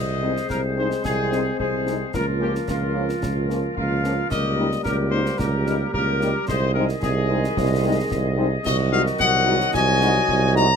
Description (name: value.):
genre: military-style march for wind band.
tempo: 110 BPM.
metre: 2/4.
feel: straight.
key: Ab major.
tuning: A4 = 440 Hz.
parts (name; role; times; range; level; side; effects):
mellow trumpet section; melody; 0.0-10.8 s; F4 to Bb5; -24 LUFS; left 3 dB; none.
clear woodwind section; second line; 0.0-10.8 s; F4 to Eb5; -27 LUFS; left 2 dB; none.
dark trombone section; sustained chords; 0.0-10.8 s; Eb3 to C4; -29 LUFS; equal; none.
mellow tuba; bass; 0.0-10.7 s; C2 to Db2; -23 LUFS; right 3 dB; none.
mellow French horn section; accompaniment; 0.2-10.7 s; F3 to Gb4; -25 LUFS; left 3 dB; none.
concert snare drum, concert bass drum and clash cymbals; drums; 0.4-10.7 s; none; -33 LUFS; equal; none.
room: little or no reverb.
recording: close, detailed microphones.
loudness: -19 LUFS.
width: side -6 dB against mid.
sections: 0.0-10.8 A section.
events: none.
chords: 0.0 Ab/C; 2.1 Bbm/Db; 4.3 Eb7/Db; 6.5 Ab/C; 8.7 Ab7/C.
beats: 0.50 | 1.04 1.59 | 2.13 2.68 | 3.22 3.76 | 4.31 4.85 | 5.39 5.94 | 6.48 7.03 | 7.57 8.11 | 8.66 9.20 | 9.74 10.29.